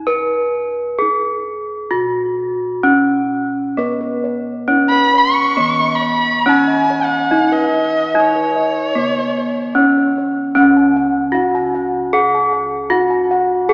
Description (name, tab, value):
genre	Javanese gamelan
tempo	65-77 BPM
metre	4/4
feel	straight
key	Db slendro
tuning	A4 = 442 Hz
part	gamelan-type bronze metallophone	melody	0.0-13.7 s	Cb4-45c to Cb5-45c	-15 LUFS	equal	none
part	gamelan-type bossed gongs	bass	0.0-13.7 s	Db2 to Cb5-45c	-24 LUFS	equal	none
part	gamelan-type bossed gongs	arpeggios	3.8-13.7 s	Cb5-45c to Ab5+25c	-22 LUFS	equal	none
part	warm erhu	second line	4.9-9.8 s	Db5 to Db6	-15 LUFS	equal	none
room	wet church reverb, RT60 2.9 s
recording	recorded in a church or concert hall, small speaker sound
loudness	-13 LUFS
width	side -32 dB against mid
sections	0.0-10.6 A section; 10.6-13.7 B section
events	none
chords	none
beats	| 0.08 1.00 1.93 2.85 | 3.77 4.69 5.58 6.45 | 7.31 8.15 8.97 9.78 | 10.56 11.35 12.13 12.91 | 13.69